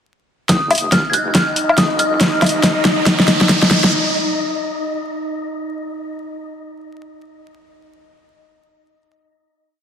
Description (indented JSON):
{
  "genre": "deep dubstep",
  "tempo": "140 BPM",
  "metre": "4/4",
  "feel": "swing 62% on 16ths, half-time",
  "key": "unclear",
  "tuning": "A4 = 439 Hz",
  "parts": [
    { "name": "dark detuned synth bell", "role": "melody", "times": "0.5-2.8 s", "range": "Eb6 to Ab6", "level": "-21 LUFS", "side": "equal", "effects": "chorus, dub echo" },
    { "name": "wobble bass", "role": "bass", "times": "0.5-3.7 s", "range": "Eb1 to Gb1", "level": "-30 LUFS", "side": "equal", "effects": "chorus, high-pass filter" },
    { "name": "deep house drum kit", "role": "drums", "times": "0.5-3.9 s", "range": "hi-hat, snare drum, woodblock", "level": "-14 LUFS", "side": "equal", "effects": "overdrive, studio reverb" },
    { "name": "electronic kick drum", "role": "drums", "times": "0.5-3.6 s", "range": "none", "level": "-24 LUFS", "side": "equal", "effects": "overdrive, high-pass filter on kick, studio reverb" },
    { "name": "riser", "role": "sound effects", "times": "1.5-3.9 s", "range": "none", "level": "-23 LUFS", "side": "right 1 dB", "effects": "none" },
    { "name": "wind-like tuned noise texture", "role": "texture", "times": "0.9-3.9 s", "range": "Eb4 to Eb5", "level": "-22 LUFS", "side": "left 1 dB", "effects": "built-in reverb" }
  ],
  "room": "moderate echo chamber reverb, RT60 1.7 s",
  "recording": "dense, heavily limited modern master, vinyl crackle",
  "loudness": "-14 LUFS",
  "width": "side -8 dB against mid",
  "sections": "0.5-3.9 build",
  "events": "build-up 0.5-3.9; drum fill 0.5-3.9; riser 1.5-3.9",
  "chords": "0.5 Ebmadd9",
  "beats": "| 0.49 0.92 1.35 1.78 | 2.21 2.64 3.06 3.49"
}